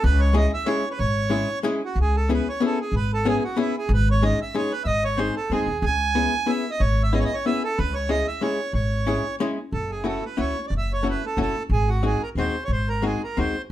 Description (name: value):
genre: musette waltz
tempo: 185 BPM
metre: 3/4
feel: straight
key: C# minor, F# minor from 9.7 s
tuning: A4 = 440 Hz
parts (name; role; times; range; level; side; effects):
- accordion; melody; 0.0-13.6 s; E4 to G#5; -26 LUFS; right 3 dB; none
- upright bass; bass; 0.0-13.7 s; F#1 to F#2; -23 LUFS; equal; none
- archtop guitar, miked and amplified; accompaniment; 0.3-13.6 s; G#3 to G#4; -25 LUFS; left 3 dB; none
room: moderate small room reverb, RT60 0.5 s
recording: band playing live in one room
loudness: -21 LUFS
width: side -13 dB against mid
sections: 0.0-2.0 A section; 2.0-9.7 A section; 9.7-13.7 B section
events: none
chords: 0.0 C#m; 2.0 C#m7; 3.9 G#sus4; 4.9 G#; 5.8 C#m7; 7.8 C#m; 9.7 F#m7; 11.7 G#7